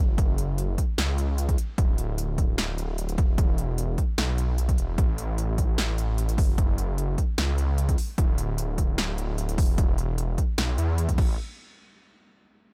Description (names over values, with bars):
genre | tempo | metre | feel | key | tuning
future bass | 150 BPM | 4/4 | swing 53% on 16ths, half-time | unclear | A4 = 440 Hz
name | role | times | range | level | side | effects
detuned saw bass | bass | 0.0-11.4 s | D1 to E2 | -29 LUFS | equal | chorus, sidechain pumping
big-room dance drum kit | drums | 0.2-11.3 s | crash cymbal, hi-hat, snare drum | -34 LUFS | equal | none
electronic kick drum | drums | 0.2-11.3 s | none | -26 LUFS | equal | none
room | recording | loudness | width
little or no reverb | none | -26 LUFS | mono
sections
0.0-11.4 A section; 11.4-12.7 B section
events
none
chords
none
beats
| 0.18 0.58 0.98 1.38 | 1.78 2.18 2.58 2.98 | 3.38 3.78 4.18 4.58 | 4.98 5.38 5.78 6.18 | 6.58 6.98 7.38 7.78 | 8.18 8.58 8.98 9.38 | 9.78 10.18 10.58 10.98